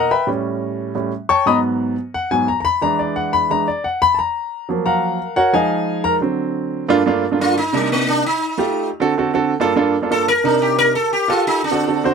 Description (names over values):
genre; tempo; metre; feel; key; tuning
jazz; 177 BPM; 4/4; straight; G minor from 6.9 s; A4 = 440 Hz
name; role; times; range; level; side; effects
clear upright piano; accompaniment; 0.0-12.1 s; G2 to Eb6; -16 LUFS; right 1 dB; none
sitar; melody; 7.4-12.1 s; G3 to Bb4; -17 LUFS; left 1 dB; none
room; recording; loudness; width
light reverb; close, detailed microphones; -16 LUFS; side -6 dB against mid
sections
0.0-6.9 A section; 6.9-12.1 A section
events
upright piano solo 0.0-6.9; sitar solo 6.9-12.1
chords
0.1 A9; 1.5 Abm9; 2.8 E7; 4.2 Gbmaj7; 5.5 Fm7; 6.2 D7; 6.9 Gm9; 7.6 Cm7; 8.2 Fadd9; 8.9 D7; 9.6 Gm9; 10.3 Cm7; 11.0 Fadd9; 11.6 D7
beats
| 0.11 0.45 0.79 1.13 | 1.47 1.81 2.15 2.48 | 2.82 3.16 3.50 3.84 | 4.18 4.52 4.86 5.20 | 5.54 5.88 6.21 6.55 | 6.89 7.23 7.57 7.91 | 8.25 8.59 8.93 9.26 | 9.60 9.94 10.28 10.62 | 10.96 11.29 11.63 11.97